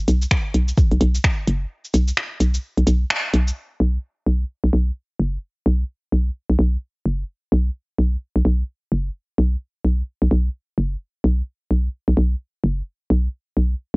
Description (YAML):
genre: minimal techno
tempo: 129 BPM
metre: 4/4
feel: swing 60% on 16ths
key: unclear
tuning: A4 = 440 Hz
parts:
  - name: hollow knocking FM bass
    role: bass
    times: 0.1-14.0 s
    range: F#1 to B1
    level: -17 LUFS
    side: equal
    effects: sidechain pumping
  - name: booming analog drum machine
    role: drums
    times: 0.1-3.5 s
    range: cabasa, finger snaps, hi-hat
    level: -23 LUFS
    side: equal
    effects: low-pass filter on perc, cassette tape, low-pass filter on hats, low-pass filter on snare, low-pass filter on room
  - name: electronic kick drum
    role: drums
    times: 0.3-1.4 s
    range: none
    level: -18 LUFS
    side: equal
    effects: overdrive, cassette tape
room: little or no reverb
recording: home recording on cassette, nothing above 7.7 kHz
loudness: -19 LUFS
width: side -31 dB against mid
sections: 0.0-3.6 A section; 3.6-14.0 B section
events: kick drops out 1.7-3.6; band accent 3.1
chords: none